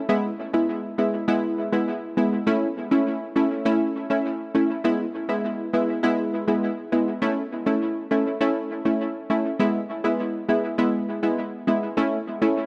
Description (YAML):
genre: dancehall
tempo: 101 BPM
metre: 4/4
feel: straight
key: A major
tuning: A4 = 440 Hz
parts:
  - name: punchy chord stab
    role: solo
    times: 0.1-12.7 s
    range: G#3 to E4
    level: -24 LUFS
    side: equal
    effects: chorus, dub echo
room: moderate echo chamber reverb, RT60 2.3 s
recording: echo-heavy mix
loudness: -24 LUFS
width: mono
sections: 0.0-7.2 A section; 7.2-12.7 B section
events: none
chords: 0.1 E; 2.5 A; 4.8 E; 7.2 A; 9.6 E; 12.0 A